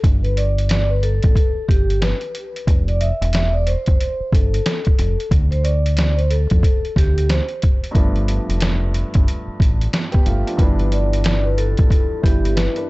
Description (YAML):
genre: hip hop, boom-bap hip-hop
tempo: 91 BPM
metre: 4/4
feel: swing 62% on 16ths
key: unclear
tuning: A4 = 440 Hz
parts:
  - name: deep dub fingered electric bass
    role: bass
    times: 0.0-12.7 s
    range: E1 to F2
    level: -18 LUFS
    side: equal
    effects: none
  - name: trip hop sampler-style drum kit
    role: drums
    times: 0.0-12.9 s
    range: hi-hat, kick drum, snare drum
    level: -17 LUFS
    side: equal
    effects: none
  - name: vibraphone with soft mallets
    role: melody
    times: 0.2-12.9 s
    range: G4 to E5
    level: -24 LUFS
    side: equal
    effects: high-pass filter, low-pass filter, digital delay
  - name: dark baby grand piano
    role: accompaniment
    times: 7.9-12.9 s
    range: G2 to B4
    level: -25 LUFS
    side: right 1 dB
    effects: high-pass filter, low-pass filter
room: small room ambience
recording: dark, warm production, nothing above 8.0 kHz, faint mains hum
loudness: -15 LUFS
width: side -21 dB against mid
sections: 0.0-12.9 A section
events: none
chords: 0.0 Gadd9; 2.7 Fmaj7; 5.3 D5; 8.0 G7; 10.6 Em7/G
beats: | 0.04 0.70 1.36 2.02 | 2.67 3.33 3.99 4.65 | 5.31 5.97 6.63 7.29 | 7.95 8.61 9.27 9.93 | 10.59 11.25 11.91 12.57